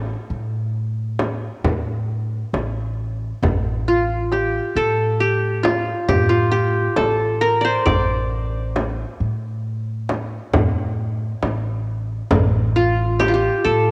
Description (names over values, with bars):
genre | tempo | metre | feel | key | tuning
Arabic maqam ensemble | 135 BPM (eighths) | 10/8 | straight | A maqam kurd | A4 = 440 Hz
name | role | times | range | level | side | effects
qanun | melody | 0.0-13.9 s | F4 to D5 | -21 LUFS | equal | cassette tape
upright bass | bass | 0.0-13.9 s | A1 to A2 | -25 LUFS | equal | none
frame drum | percussion | 1.2-13.4 s | none | -26 LUFS | equal | none
darbuka | percussion | 3.4-13.5 s | none | -28 LUFS | equal | none
room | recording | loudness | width
moderate lush hall reverb, RT60 2.6 s | home recording on cassette | -21 LUFS | mono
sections
0.0-13.9 A section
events
none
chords
none